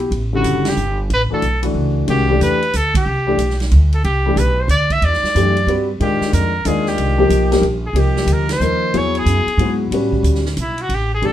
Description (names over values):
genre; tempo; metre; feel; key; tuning
modal jazz; 184 BPM; 3/4; swing 64% on 8ths; unclear; A4 = 441 Hz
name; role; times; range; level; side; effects
warm concert grand piano; accompaniment; 0.0-11.3 s; D3 to B4; -18 LUFS; left 2 dB; none
upright bass; bass; 0.0-11.3 s; F#1 to A2; -18 LUFS; right 1 dB; none
vintage drum kit; drums; 0.0-11.3 s; hi-hat, kick drum, ride cymbal, snare drum; -26 LUFS; right 2 dB; none
clear trumpet; melody; 0.4-11.3 s; E4 to E5; -20 LUFS; equal; none
room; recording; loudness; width
moderate studio reverb, RT60 0.6 s; minimal, uncompressed stereo recording; -14 LUFS; side -12 dB against mid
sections
0.0-2.1 A section; 2.1-9.9 B section; 9.9-11.3 C section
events
band accent 0.6, 2.9; trumpet solo 9.9-11.3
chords
0.0 A13sus4; 2.1 Cmaj9; 6.0 Abmaj9; 8.9 Eadd9; 9.9 A13sus4